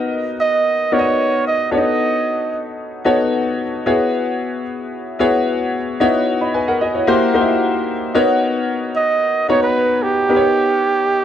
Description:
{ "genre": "pop", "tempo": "112 BPM", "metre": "4/4", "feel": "straight", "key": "unclear", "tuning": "A4 = 442 Hz", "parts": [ { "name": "clear grand piano", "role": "accompaniment", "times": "0.0-11.2 s", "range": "Bb3 to B5", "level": "-17 LUFS", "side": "left 2 dB", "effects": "analog chorus" }, { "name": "warm flugelhorn", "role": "melody", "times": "0.4-2.8, 9.0-11.2 s", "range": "G4 to D#5", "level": "-16 LUFS", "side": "right 4 dB", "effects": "slapback echo" } ], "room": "light reverb, studio ambience", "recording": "dry, close 1970s-style studio recording", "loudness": "-15 LUFS", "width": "side -10 dB against mid", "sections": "0.0-11.2 A section", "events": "none", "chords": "0.0 Bmaj7; 1.7 B9; 3.9 E69; 6.0 C#m11; 7.1 C7#11; 8.1 Bmaj9; 10.3 D#7b13", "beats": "0.12 0.65 1.19 | 1.72 2.26 2.79 3.33 | 3.86 4.40 4.93 5.47 | 6.00 6.54 7.08 7.61 | 8.15 8.68 9.22 9.75 | 10.29 10.82" }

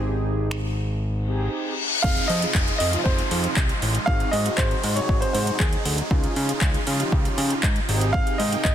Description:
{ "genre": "dance-pop", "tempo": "118 BPM", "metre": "4/4", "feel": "straight", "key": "unclear", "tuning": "A4 = 440 Hz", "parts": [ { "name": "mellow synth brass", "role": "accompaniment", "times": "0.0-8.7 s", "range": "C4 to Ab4", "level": "-30 LUFS", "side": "right 2 dB", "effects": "chorus, sidechain pumping" }, { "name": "fat analog bass", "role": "bass", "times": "0.0-8.7 s", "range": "F1 to Db3", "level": "-25 LUFS", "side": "equal", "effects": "sidechain pumping" }, { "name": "deep house drum kit", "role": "drums", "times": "0.5-8.7 s", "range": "crash cymbal, finger snaps, handclaps, hi-hat, kick drum", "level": "-23 LUFS", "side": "equal", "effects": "overdrive" }, { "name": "reverse cymbal and downlifter", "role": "sound effects", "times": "1.5-6.1 s", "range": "none", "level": "-28 LUFS", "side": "left 3 dB", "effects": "none" }, { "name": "warm grand piano", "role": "melody", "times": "2.0-8.7 s", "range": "Ab4 to F5", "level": "-27 LUFS", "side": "equal", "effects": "dub echo" }, { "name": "supersaw chords", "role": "sustained chords", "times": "2.0-8.7 s", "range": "C3 to G5", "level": "-31 LUFS", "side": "right 1 dB", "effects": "phaser, sidechain pumping" } ], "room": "light reverb, digital ambience", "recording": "dense, heavily limited modern master", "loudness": "-20 LUFS", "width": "side -10 dB against mid", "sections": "0.0-2.0 A section; 2.0-8.7 B section", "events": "reverse cymbal 1.5-2.0", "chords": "0.0 Abmaj7; 2.0 Fm7; 4.1 Ab7; 6.1 Dbadd9; 7.9 Abmaj7", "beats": "| 0.01 0.52 1.02 1.53 | 2.04 2.55 3.06 3.57 | 4.07 4.58 5.09 5.60 | 6.11 6.62 7.12 7.63 | 8.14 8.65" }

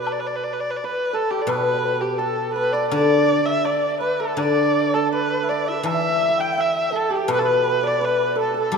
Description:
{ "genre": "chinese traditional, Chinese chamber ensemble", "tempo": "83 BPM", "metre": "2/4", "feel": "rubato", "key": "G gong mode", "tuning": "A4 = 440 Hz", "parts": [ { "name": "warm erhu", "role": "melody", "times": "0.0-8.8 s", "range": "G4 to G5", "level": "-23 LUFS", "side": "equal", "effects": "none" }, { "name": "breathy mellow xiao", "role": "second line", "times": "0.0-8.8 s", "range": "E4 to B5", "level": "-26 LUFS", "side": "left 5 dB", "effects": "none" }, { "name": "hammered dulcimer", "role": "second line", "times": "0.0-8.8 s", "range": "G4 to G5", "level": "-26 LUFS", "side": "right 6 dB", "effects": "none" }, { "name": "guzheng", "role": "accompaniment", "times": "0.0-8.8 s", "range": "B2 to G3", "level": "-24 LUFS", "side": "left 2 dB", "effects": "none" }, { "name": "woodblock", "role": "percussion", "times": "0.1-8.8 s", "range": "none", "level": "-34 LUFS", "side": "left 4 dB", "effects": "none" } ], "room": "wet concert hall reverb, RT60 2.4 s", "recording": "none", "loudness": "-18 LUFS", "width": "side -5 dB against mid", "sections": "0.0-8.8 A section", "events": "none", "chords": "none", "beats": "| 0.07 0.78 | 1.49 2.19 | 2.92 3.64 | 4.38 5.12 | 5.85 6.57 | 7.28 8.00 | 8.73" }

